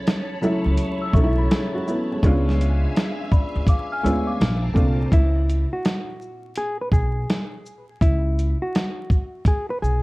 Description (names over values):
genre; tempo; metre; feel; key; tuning
lo-fi hip hop; 83 BPM; 4/4; swing 65% on 16ths; unclear; A4 = 440 Hz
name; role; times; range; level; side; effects
warm upright piano; accompaniment; 0.0-5.1 s; A#2 to G#4; -24 LUFS; equal; cassette tape, low-pass filter
phased string machine; sustained chords; 0.0-5.1 s; B#4 to D6; -35 LUFS; equal; ensemble chorus, phaser, low-pass filter
dusty soul sampler-style drum kit; drums; 0.1-10.0 s; hi-hat, kick drum, shaker, snare drum; -20 LUFS; equal; vintage 12-bit sampler grit
upright bass; bass; 0.7-10.0 s; A#1 to D2; -21 LUFS; equal; none
celesta; second line; 1.0-4.6 s; D5 to F6; -30 LUFS; left 3 dB; low-pass filter, tape echo
hollow-body jazz guitar; melody; 5.1-10.0 s; E4 to B4; -28 LUFS; equal; low-pass filter, tape echo
room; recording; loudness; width
light reverb; dark, warm production, vinyl crackle; -19 LUFS; side -22 dB against mid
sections
0.0-5.1 A section; 5.1-10.0 B section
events
none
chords
0.0 B9sus4/C#; 2.2 E7b9/C#; 4.4 A#maj9; 5.1 Bsus24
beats
0.06 0.78 1.50 | 2.22 2.95 3.67 4.39 | 5.12 5.84 6.56 7.28 | 8.01 8.73 9.45